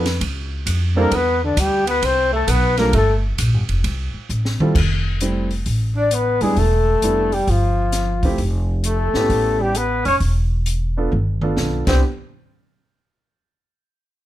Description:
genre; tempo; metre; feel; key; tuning
jazz, small-group swing and bop; 132 BPM; 4/4; swing 66% on 8ths; C major; A4 = 439 Hz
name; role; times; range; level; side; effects
breathy flugelhorn; melody; 0.0-3.1, 6.0-12.0 s; D4 to D5; -20 LUFS; left 4 dB; none
breathy tenor saxophone; second line; 0.0-3.2, 6.0-12.0 s; D3 to D4; -24 LUFS; right 3 dB; none
warm grand piano; accompaniment; 0.0-12.0 s; G3 to A4; -23 LUFS; right 3 dB; none
upright bass; bass; 0.0-12.0 s; E1 to F2; -20 LUFS; equal; none
open jazz drum kit; drums; 0.1-11.9 s; crash cymbal, hi-hat, kick drum, ride cymbal, snare drum, toms; -24 LUFS; equal; none
room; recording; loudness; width
light reverb; close, detailed microphones; -16 LUFS; side -14 dB against mid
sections
0.0-4.7 A section; 4.7-12.0 B section; 12.0-13.8 C section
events
drum fill 4.3-4.7, 11.1-12.0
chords
0.2 Db; 1.1 Cmaj7; 2.9 Gm7; 3.8 C6; 4.7 Fmaj9; 5.7 A5; 6.6 Em7; 7.5 G13sus4; 8.4 Fmaj9; 9.3 A7; 10.2 E5; 11.1 G7; 11.8 Cmaj7; 12.0 N.C.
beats
0.21 0.66 | 1.11 1.57 2.02 2.48 | 2.93 3.39 3.84 4.29 | 4.75 5.20 5.66 6.11 | 6.57 7.02 7.47 7.93 | 8.38 8.84 9.29 9.75 | 10.20 10.66 11.12 11.57

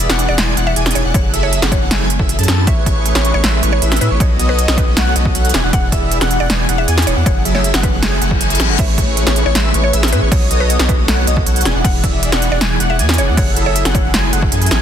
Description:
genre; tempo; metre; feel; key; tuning
future bass; 157 BPM; 4/4; half-time; A major; A4 = 440 Hz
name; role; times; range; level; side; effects
airy dreamy lead; arpeggios; 0.0-14.8 s; C#5 to A5; -24 LUFS; equal; chorus, sidechain pumping
big bright polysynth; riff; 0.0-14.8 s; E3 to A5; -20 LUFS; equal; lush chorus, sidechain pumping
saturated sub bass; bass; 0.0-14.8 s; E1 to A2; -17 LUFS; equal; sidechain pumping
big-room dance drum kit; drums; 0.0-14.8 s; crash cymbal, hi-hat, snare drum; -18 LUFS; right 1 dB; overdrive
mallet-like synth pluck; melody; 0.3-14.2 s; B4 to F#5; -25 LUFS; equal; chorus, sidechain pumping, digital delay
electronic kick drum; drums; 1.1-14.5 s; none; -17 LUFS; equal; overdrive
reverse cymbal; sound effects; 8.2-8.8 s; none; -24 LUFS; left 6 dB; none
room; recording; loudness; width
little or no reverb; dense, heavily limited modern master; -12 LUFS; side -9 dB against mid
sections
0.0-14.8 A section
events
reverse cymbal 8.2-8.8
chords
0.0 E9; 1.1 F#m7; 2.7 Amaj7; 4.2 B7; 5.5 E9; 7.3 F#m7; 8.8 Amaj7; 10.3 B7; 11.7 E9; 13.4 F#m7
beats
0.00 0.38 0.76 | 1.15 1.53 1.91 2.29 | 2.67 3.06 3.44 3.82 | 4.20 4.58 4.97 5.35 | 5.73 6.11 6.50 6.88 | 7.26 7.64 8.02 8.41 | 8.79 9.17 9.55 9.94 | 10.32 10.70 11.08 11.46 | 11.85 12.23 12.61 12.99 | 13.37 13.76 14.14 14.52

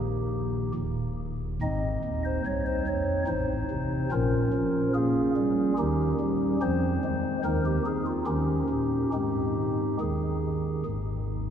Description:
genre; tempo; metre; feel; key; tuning
classical, chorale-style piece for pipe organ; 71 BPM; 3/4; rubato; Ab major; A4 = 440 Hz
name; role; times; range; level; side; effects
pipe organ, stopped flute; solo; 0.0-11.5 s; Eb1 to Eb5; -25 LUFS; equal; none
room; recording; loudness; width
wet cathedral reverb, RT60 6.5 s; recorded in a church or concert hall; -25 LUFS; side -8 dB against mid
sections
0.0-11.5 A section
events
none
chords
0.0 Eb; 1.6 Ab; 3.3 Adim; 4.1 Bbm7; 5.8 Eb7; 6.6 Fm; 7.4 Eb69; 8.3 Eb7; 9.1 Ab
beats
0.75 | 1.61 2.45 3.28 | 4.12 4.95 5.77 | 6.62 7.44 8.27 | 9.12 9.99 10.85

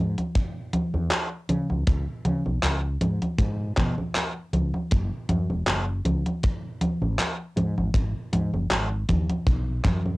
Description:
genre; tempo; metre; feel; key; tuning
vaporwave; 79 BPM; 4/4; swing 55% on 16ths; C# minor; A4 = 440 Hz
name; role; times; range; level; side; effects
woody fretless electric bass; bass; 0.0-10.2 s; E1 to C#3; -26 LUFS; equal; none
gated 80s digital drum machine; drums; 0.2-10.2 s; congas, handclaps, hi-hat; -26 LUFS; equal; gated reverb, overdrive, vintage 12-bit sampler grit, cassette tape
kick drum; drums; 0.4-10.0 s; none; -26 LUFS; equal; vintage 12-bit sampler grit, cassette tape
room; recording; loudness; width
little or no reverb; home recording on cassette; -23 LUFS; side -21 dB against mid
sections
0.0-10.2 A section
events
none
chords
none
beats
0.35 1.11 | 1.87 2.63 3.39 4.15 | 4.91 5.67 6.43 7.19 | 7.95 8.71 9.47

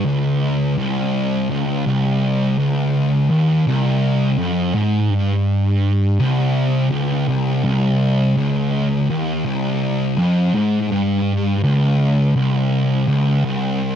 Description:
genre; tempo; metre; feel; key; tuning
metal; 83 BPM; 4/4; straight; unclear; A4 = 445 Hz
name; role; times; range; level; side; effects
thick fuzz guitar; solo; 0.0-14.0 s; C2 to Ab2; -16 LUFS; equal; distortion
room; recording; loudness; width
little or no reverb; dry, close 1970s-style studio recording; -16 LUFS; side -9 dB against mid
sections
0.0-13.4 A section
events
none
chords
none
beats
0.42 1.14 | 1.86 2.59 3.31 4.04 | 4.76 5.48 6.21 6.93 | 7.65 8.38 9.10 9.82 | 10.54 11.27 11.99 12.72 | 13.44

